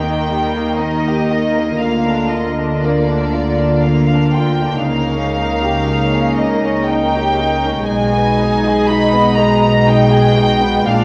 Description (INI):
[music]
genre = classical, slow romantic movement for string orchestra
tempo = 60 BPM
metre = 3/4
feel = rubato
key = Eb major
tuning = A4 = 440 Hz
[part]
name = warm studio violin section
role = melody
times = 0.0-11.0 s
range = D5 to Cb6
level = -22 LUFS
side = equal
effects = none
[part]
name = dark studio violin section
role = second line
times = 0.0-11.0 s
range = G3 to Eb5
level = -22 LUFS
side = equal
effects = none
[part]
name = dark chamber viola section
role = accompaniment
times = 0.0-11.0 s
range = Ab3 to F4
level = -21 LUFS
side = equal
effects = none
[part]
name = rich studio double bass section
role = bass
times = 0.0-11.0 s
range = Bb1 to Eb2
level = -24 LUFS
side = equal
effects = none
[part]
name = warm studio cello section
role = bass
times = 0.0-11.0 s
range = Bb2 to Eb3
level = -22 LUFS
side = equal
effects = none
[sound]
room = wet scoring stage reverb, RT60 2.0 s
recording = worn, warbling old tape, cassette tape, warbly pitch drift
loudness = -15 LUFS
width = mono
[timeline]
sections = 0.0-11.0 A section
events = none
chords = 0.0 Eb; 1.8 Bb/D; 4.8 Eb7/Db; 7.9 Abm/Cb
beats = 0.79 | 1.81 2.82 3.83 | 4.84 5.85 6.87 | 7.87 8.87 9.87 | 10.87